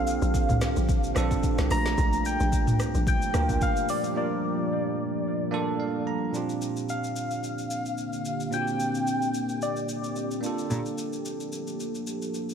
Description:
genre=amapiano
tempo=110 BPM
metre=4/4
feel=swing 55% on 16ths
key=Bb major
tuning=A4 = 442 Hz
part: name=soft struck synth lead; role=melody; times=0.0-10.4 s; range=D5 to Bb5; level=-31 LUFS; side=left 1 dB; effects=chorus, phaser, ping-pong delay
part: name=bell-like tine electric piano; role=accompaniment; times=0.0-12.5 s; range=Bb2 to Bb5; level=-31 LUFS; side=right 6 dB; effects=lush chorus
part: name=deep dark ambient pad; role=sustained chords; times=0.0-12.5 s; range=Bb2 to A4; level=-32 LUFS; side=left 2 dB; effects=chorus, built-in reverb, sidechain pumping
part: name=hollow log drum bass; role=bass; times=0.0-3.6 s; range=Bb1 to D2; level=-27 LUFS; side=equal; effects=none
part: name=afro-pop drum kit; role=drums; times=0.1-12.5 s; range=hi-hat, kick drum, rim click, shaker, snare drum, toms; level=-30 LUFS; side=equal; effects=overdrive
part: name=clear cello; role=bass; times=10.7-10.8 s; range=Bb2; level=-29 LUFS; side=equal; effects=none
room=wet plate reverb, RT60 3.0 s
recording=dreamy mix soaked in reverb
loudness=-25 LUFS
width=side -8 dB against mid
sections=0.0-6.3 A section; 6.3-12.5 B section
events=drop 0.0-6.3; break 4.2-6.3; tine electric piano fill 5.5-6.3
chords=0.0 Gm9/Bb; 6.3 Bb69; 10.4 Gm9

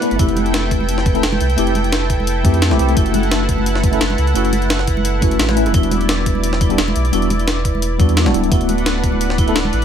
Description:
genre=liquid drum and bass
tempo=173 BPM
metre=4/4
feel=straight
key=E minor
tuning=A4 = 438 Hz
part: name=mellow tine electric piano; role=accompaniment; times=0.0-9.6 s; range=G3 to B4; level=-20 LUFS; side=left 2 dB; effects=medium stereo tremolo, digital delay
part: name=lush unison pad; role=sustained chords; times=0.0-9.8 s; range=D4 to G5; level=-24 LUFS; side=equal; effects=chorus, sidechain pumping
part: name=vibraphone with hard mallets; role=arpeggios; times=0.0-9.8 s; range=E4 to B4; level=-25 LUFS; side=right 8 dB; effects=digital delay
part: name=breakbeat sampler-style drum kit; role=drums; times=0.0-9.8 s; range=hi-hat, snare drum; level=-22 LUFS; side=equal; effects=studio reverb
part: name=sub bass with octave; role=bass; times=0.1-9.8 s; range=D1 to F2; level=-19 LUFS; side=equal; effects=tube saturation
part: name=electronic kick drum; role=drums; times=0.2-9.5 s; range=none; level=-17 LUFS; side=equal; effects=studio reverb
part: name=congas and bongos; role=percussion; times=0.4-9.7 s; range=none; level=-26 LUFS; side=right 5 dB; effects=none
room=little or no reverb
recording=none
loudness=-14 LUFS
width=side -8 dB against mid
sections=0.0-9.8 A section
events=none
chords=0.2 Fmaj9; 3.0 F#m7; 5.7 Em7; 8.5 D6

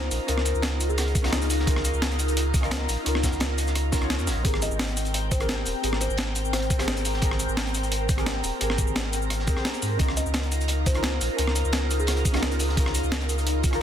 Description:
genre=liquid drum and bass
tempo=173 BPM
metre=4/4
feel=straight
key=unclear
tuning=A4 = 440 Hz
part: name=deep mellow chord stab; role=accompaniment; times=0.0-13.8 s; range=C4 to Db5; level=-33 LUFS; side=left 1 dB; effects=wide subtle chorus, ping-pong delay
part: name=airy breathy pad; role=sustained chords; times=0.0-13.8 s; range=C4 to G5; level=-31 LUFS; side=equal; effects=chorus, phaser, sidechain pumping
part: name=warm sub bass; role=bass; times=0.0-13.8 s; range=Eb1 to Ab2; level=-27 LUFS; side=equal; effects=tube saturation
part: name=breakbeat sampler-style drum kit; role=drums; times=0.1-13.8 s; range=cabasa, hi-hat, rim click, snare drum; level=-29 LUFS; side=equal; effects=none
part: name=crunchy breakbeat drum kit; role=drums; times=0.1-13.8 s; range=hi-hat, snare drum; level=-35 LUFS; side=left 1 dB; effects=high-pass filter on hats, high-pass filter on snare, high-pass filter on room
part: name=kalimba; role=melody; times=0.3-1.2, 4.6-6.9, 10.2-12.3 s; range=Ab4 to Eb5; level=-35 LUFS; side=left 1 dB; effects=vintage 12-bit sampler grit, ping-pong delay
part: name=electronic kick drum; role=drums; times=1.2-13.7 s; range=none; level=-25 LUFS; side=equal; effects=none
room=light reverb, studio ambience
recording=dense, heavily limited modern master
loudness=-22 LUFS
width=side -9 dB against mid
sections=0.0-13.8 A section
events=none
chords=0.0 Db69; 4.4 Abmaj9; 10.0 Db69

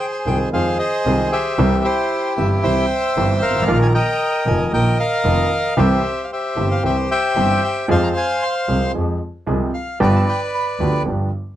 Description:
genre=tango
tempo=114 BPM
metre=4/4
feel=rubato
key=F minor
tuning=A4 = 440 Hz
part: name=bandoneon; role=melody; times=0.0-11.0 s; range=E4 to C6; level=-19 LUFS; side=equal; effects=none
part: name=warm grand piano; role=accompaniment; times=0.3-11.3 s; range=F1 to Ab4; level=-21 LUFS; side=right 1 dB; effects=none
part: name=clear double bass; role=bass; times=0.3-11.3 s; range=F1 to F2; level=-20 LUFS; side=equal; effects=none
room=light reverb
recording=close, detailed microphones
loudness=-16 LUFS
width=side -12 dB against mid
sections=0.0-11.6 A section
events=none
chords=0.0 Fm7; 1.6 C; 3.7 Bbsus4; 5.8 C; 7.9 Fm; 10.0 G7

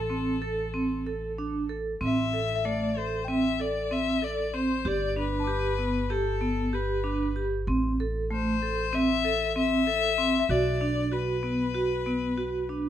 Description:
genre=contemporary instrumental, chamber music in an uneven meter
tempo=191 BPM (eighths)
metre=9/8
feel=straight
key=A minor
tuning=A4 = 440 Hz
part: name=rich violin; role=melody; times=0.0-12.9 s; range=A4 to E5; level=-30 LUFS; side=left 7 dB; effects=none
part: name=vibraphone with hard mallets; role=arpeggios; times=0.0-12.9 s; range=A3 to A4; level=-28 LUFS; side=right 2 dB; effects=none
part: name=upright bass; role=bass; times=0.0-12.9 s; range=G1 to B1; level=-33 LUFS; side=right 1 dB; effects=none
part: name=worn celesta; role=texture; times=0.0-10.8 s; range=E5 to D6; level=-36 LUFS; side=left 8 dB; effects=none
room=light reverb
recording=close, detailed microphones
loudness=-25 LUFS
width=side -10 dB against mid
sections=0.0-2.0 A section; 2.0-12.9 B section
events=none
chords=0.0 Am; 4.9 G; 7.7 Am; 10.5 Bm

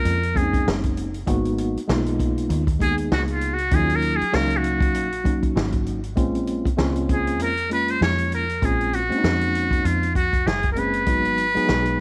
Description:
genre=hip hop, jazz-hop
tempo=98 BPM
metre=4/4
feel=swing 57% on 16ths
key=Bb phrygian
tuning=A4 = 436 Hz
part: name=trumpet with metal mute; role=melody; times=0.0-12.0 s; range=F4 to Db5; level=-25 LUFS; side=equal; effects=none
part: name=mellow tine electric piano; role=accompaniment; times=0.0-12.0 s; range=F3 to F5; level=-28 LUFS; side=equal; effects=none
part: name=deep dub fingered electric bass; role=bass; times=0.0-12.0 s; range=Gb1 to F2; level=-28 LUFS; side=equal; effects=none
part: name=vintage drum kit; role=drums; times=0.1-12.0 s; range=hi-hat, kick drum, snare drum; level=-27 LUFS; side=equal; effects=none
room=light reverb, studio reverb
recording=vinyl crackle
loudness=-22 LUFS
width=mono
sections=0.0-8.6 A section; 8.6-12.0 B section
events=muted trumpet solo 0.0-8.6; kick muted 7.4-8.6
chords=0.0 Bbm9; 1.3 Abm9; 3.7 Ebm9; 6.2 Bbm9; 11.1 Abm7

